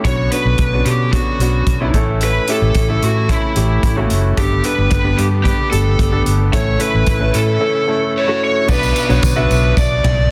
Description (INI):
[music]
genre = piano-driven pop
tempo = 111 BPM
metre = 4/4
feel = straight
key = B minor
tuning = A4 = 438 Hz
[part]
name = bright concert grand piano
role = accompaniment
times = 0.0-10.3 s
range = G2 to E5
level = -23 LUFS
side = equal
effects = none
[part]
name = rich studio string section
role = sustained chords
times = 0.0-8.7 s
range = C#3 to G4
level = -31 LUFS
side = equal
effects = none
[part]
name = vintage muted fingered electric bass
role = bass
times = 0.0-10.3 s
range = F#1 to B2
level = -19 LUFS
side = equal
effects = none
[part]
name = loose indie drum kit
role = drums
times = 0.0-10.2 s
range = crash cymbal, hi-hat, kick drum, ride cymbal, snare drum, toms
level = -21 LUFS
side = equal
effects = none
[part]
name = lead guitar through a small cranked amp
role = melody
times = 0.1-10.3 s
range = E4 to D5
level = -22 LUFS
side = equal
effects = overdrive
[part]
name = tambourine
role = percussion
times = 8.7-9.9 s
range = none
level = -32 LUFS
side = equal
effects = none
[sound]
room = light reverb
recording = dense, heavily limited modern master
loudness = -15 LUFS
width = mono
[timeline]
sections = 0.0-8.7 A section; 8.7-10.3 B section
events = none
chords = 0.0 Bmadd9; 1.9 A; 4.4 Gadd9; 6.5 A; 8.7 Bm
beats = | 0.05 0.59 1.13 1.67 | 2.21 2.75 3.29 3.83 | 4.37 4.91 5.45 5.99 | 6.53 7.07 7.61 8.15 | 8.69 9.23 9.77 10.31